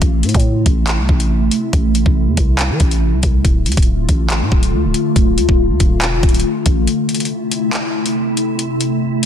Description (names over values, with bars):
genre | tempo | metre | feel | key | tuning
hip hop, drill | 140 BPM | 4/4 | half-time | A minor | A4 = 439 Hz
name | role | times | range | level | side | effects
glassy FM pad | sustained chords | 0.0-9.3 s | C3 to F4 | -18 LUFS | left 1 dB | ensemble chorus, built-in reverb, phaser
growling 808-style bass | bass | 0.0-6.9 s | D1 to E3 | -17 LUFS | equal | none
drill drum kit | drums | 0.0-9.3 s | handclaps, hi-hat, kick drum | -16 LUFS | equal | vintage 12-bit sampler grit
room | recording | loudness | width
light reverb | dense, heavily limited modern master | -13 LUFS | side -9 dB against mid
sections
0.0-9.3 A section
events
break 6.9-9.3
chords
0.0 Am; 3.4 Dm; 6.9 Am